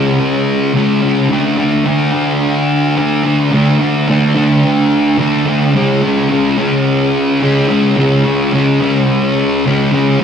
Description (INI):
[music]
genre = rock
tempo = 108 BPM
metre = 4/4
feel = straight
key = unclear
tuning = A4 = 440 Hz
[part]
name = thick fuzz guitar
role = solo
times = 0.0-10.2 s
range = C#3 to D4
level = -11 LUFS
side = equal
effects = distortion, tape echo
[sound]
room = wet stone room reverb, RT60 1.0 s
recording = rough rehearsal-room recording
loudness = -11 LUFS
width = side -7 dB against mid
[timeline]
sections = 0.0-1.3 A section; 1.3-10.2 B section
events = none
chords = 0.0 C#5; 1.3 D5; 5.7 C#5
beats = 0.18 0.74 | 1.30 1.85 2.41 2.96 | 3.52 4.08 4.63 5.19 | 5.75 6.30 6.86 7.42 | 7.97 8.53 9.09 9.65 | 10.21